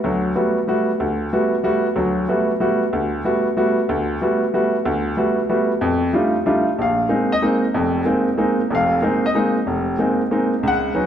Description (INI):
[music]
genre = jazz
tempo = 187 BPM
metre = 3/4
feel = swing 64% on 8ths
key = G major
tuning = A4 = 439 Hz
[part]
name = clear baby grand piano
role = solo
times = 0.0-11.1 s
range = F1 to Gb5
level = -17 LUFS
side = equal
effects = none
[sound]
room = wet recital hall reverb, RT60 1.6 s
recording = recorded in a church or concert hall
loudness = -17 LUFS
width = side -9 dB against mid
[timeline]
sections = 0.0-6.8 A section; 6.8-11.1 B section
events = none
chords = 0.0 Gmaj9; 5.8 F13; 6.8 Bb9sus4